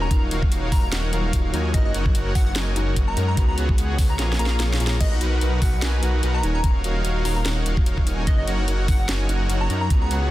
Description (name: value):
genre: future bass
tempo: 147 BPM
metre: 4/4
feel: swing 55% on 16ths, half-time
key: unclear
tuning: A4 = 440 Hz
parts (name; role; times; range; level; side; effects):
- plucky unison lead; melody; 0.0-10.1 s; Eb5 to Bb5; -32 LUFS; equal; cassette tape, sidechain pumping, digital delay
- soft round pluck; accompaniment; 0.0-5.0 s; Gb3 to Cb5; -32 LUFS; left 4 dB; chorus, sidechain pumping, digital delay
- soft supersaw; riff; 0.0-10.3 s; Bb3 to Bb5; -28 LUFS; equal; cassette tape, sidechain pumping
- wide detuned saw bass; bass; 0.0-10.3 s; Eb1 to Gb2; -23 LUFS; equal; chorus, sidechain pumping
- electronic kick drum; drums; 0.1-10.0 s; none; -20 LUFS; equal; none
- trap drum kit; drums; 0.1-10.2 s; crash cymbal, hi-hat, snare drum; -29 LUFS; equal; none
- thumb-piano-like synth pluck; arpeggios; 5.0-10.3 s; Db4 to B4; -36 LUFS; left 2 dB; none
room: digital ambience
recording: dense, heavily limited modern master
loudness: -19 LUFS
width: side -15 dB against mid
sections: 0.0-5.0 A section; 5.0-10.3 A section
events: drop 0.0-5.0, 5.0-10.3; drum fill 4.2-5.0; kick drops out 4.6-5.0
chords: 0.0 Ebm9; 1.7 Gb6; 3.4 Db7sus4; 4.2 Bbm7; 5.0 Bmaj7; 6.4 Ebm9; 8.3 Gb6